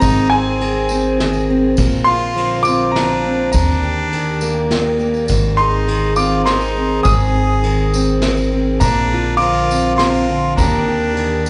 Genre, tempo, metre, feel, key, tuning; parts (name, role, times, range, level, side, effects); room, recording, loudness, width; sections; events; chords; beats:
acoustic folk duo or small band; 102 BPM; 3/4; straight; A4 = 441 Hz
bright upright piano; melody; 0.0-11.5 s; Ab5 to Eb6; -22 LUFS; equal; slapback echo, plate reverb
warm harmonica; second line; 0.0-11.5 s; C4 to Ab4; -24 LUFS; equal; plate reverb, slapback echo
fingerpicked steel-string acoustic guitar; accompaniment; 0.0-11.5 s; Eb2 to Ab4; -21 LUFS; equal
soft additive organ-like pad; sustained chords; 0.0-11.5 s; D3 to Bb4; -29 LUFS; equal
upright bass; bass; 0.0-11.5 s; Ab1 to Eb2; -23 LUFS; equal
vintage brush drum kit; drums; 0.0-11.3 s; kick drum, ride cymbal, snare drum; -26 LUFS; equal
tambourine; percussion; 0.0-11.5 s; -32 LUFS; equal
moderate club ambience, RT60 0.5 s; live gig heard through the venue's PA, club reverb, nothing above 10.4 kHz; -16 LUFS; mono
0.0-11.5 A section
0.0 Ab; 1.8 Bbadd9; 3.5 Ebmaj7; 5.3 Ab; 8.8 Bbadd9; 10.6 Ebmaj7
| 0.02 0.60 1.19 | 1.78 2.36 2.95 | 3.54 4.12 4.71 | 5.30 5.88 6.47 | 7.05 7.64 8.23 | 8.81 9.40 9.98 | 10.57 11.16